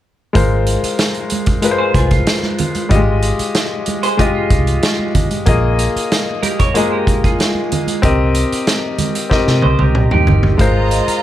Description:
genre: lush 1970s-style soul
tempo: 94 BPM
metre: 4/4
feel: straight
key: Ab major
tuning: A4 = 438 Hz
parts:
  - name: clear concert grand piano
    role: accompaniment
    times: 0.3-11.2 s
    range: G3 to Eb5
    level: -18 LUFS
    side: left 4 dB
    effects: none
  - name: vintage muted fingered electric bass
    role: bass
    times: 0.4-11.1 s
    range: G1 to C3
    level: -16 LUFS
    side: equal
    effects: none
  - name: vintage drum kit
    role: drums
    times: 0.4-11.2 s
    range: hi-hat, kick drum, snare drum, toms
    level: -17 LUFS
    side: equal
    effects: none
  - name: congas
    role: percussion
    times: 0.4-10.6 s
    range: none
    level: -24 LUFS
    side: right 5 dB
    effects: none
  - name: clean electric guitar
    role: riff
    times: 1.8-10.6 s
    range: Eb4 to Db5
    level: -20 LUFS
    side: right 4 dB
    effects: lush chorus
  - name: warm studio violin section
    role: second line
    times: 10.6-11.2 s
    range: F4 to Bb5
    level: -19 LUFS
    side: right 3 dB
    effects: none
room: small room ambience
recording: none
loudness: -13 LUFS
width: side -12 dB against mid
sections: 0.4-10.6 A section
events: drum fill 9.3-10.6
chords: 0.4 Ab69; 2.9 Fm7/Ab; 5.5 Bb7sus4; 8.0 Cm7; 10.6 Ab69

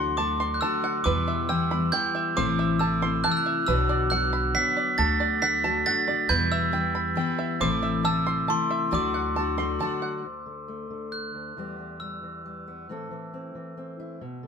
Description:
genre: indie folk with a building arrangement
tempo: 137 BPM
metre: 3/4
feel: straight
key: D mixolydian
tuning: A4 = 444 Hz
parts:
  - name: glockenspiel with hard plastic mallets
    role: melody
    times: 0.0-12.6 s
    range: C6 to B6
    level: -26 LUFS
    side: right 2 dB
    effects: none
  - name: picked steel-string acoustic guitar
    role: accompaniment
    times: 0.0-10.3 s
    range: E2 to F#4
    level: -29 LUFS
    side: left 6 dB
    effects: none
  - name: mellow tonewheel organ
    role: sustained chords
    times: 0.0-10.2 s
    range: C3 to G4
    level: -38 LUFS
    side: right 3 dB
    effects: chorus vibrato, slow rotary speaker
  - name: bluegrass banjo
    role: arpeggios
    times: 0.0-10.2 s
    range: A4 to C6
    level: -32 LUFS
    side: right 5 dB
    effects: none
  - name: upright bass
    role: bass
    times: 0.0-9.8 s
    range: A1 to E2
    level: -29 LUFS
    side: equal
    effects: none
  - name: fingerpicked steel-string acoustic guitar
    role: accompaniment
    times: 10.2-14.5 s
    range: D2 to A4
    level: -37 LUFS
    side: left 2 dB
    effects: none
room: light reverb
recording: band playing live in one room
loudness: -22 LUFS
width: side -6 dB against mid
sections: 0.0-10.2 A section; 10.2-14.5 B section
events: none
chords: 0.0 D; 1.1 Em; 2.4 Am; 3.7 Bm; 5.0 D; 6.3 Em; 7.6 Am; 8.9 D; 11.6 Em; 12.9 Am

